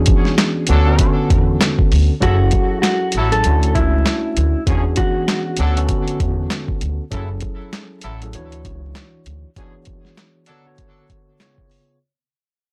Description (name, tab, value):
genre	hip hop, boom-bap hip-hop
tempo	98 BPM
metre	4/4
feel	swing 59% on 16ths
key	F# minor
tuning	A4 = 440 Hz
part	mellow tine electric piano	accompaniment	0.0-12.0 s	C#3 to C#5	-25 LUFS	equal	none
part	upright bass	bass	0.0-9.4 s	F#1 to E2	-20 LUFS	equal	tube saturation
part	boom bap sampler-style drum kit	drums	0.1-11.9 s	handclaps, hi-hat, kick drum, snare drum	-21 LUFS	equal	none
part	finger snaps	percussion	0.4-11.6 s	none	-31 LUFS	equal	none
part	clear horn section	stabs	0.7-10.7 s	D3 to A4	-29 LUFS	equal	digital delay
part	mellow electric guitar	melody	2.2-6.5 s	E4 to A4	-24 LUFS	equal	spring reverb
room	light reverb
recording	blown-out, overdriven recording, vinyl crackle, overdrive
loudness	-17 LUFS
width	mono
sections	0.0-12.0 A section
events	fade-out 0.0-12.0; break 9.6-12.0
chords	0.0 E13; 0.7 Bm7/D; 2.2 F#m7; 3.4 Dmaj9; 4.7 E13; 5.6 Bm7/D; 7.1 F#m7; 8.3 Dmaj9; 9.6 E13; 10.5 Bm7/D; 11.4 C#7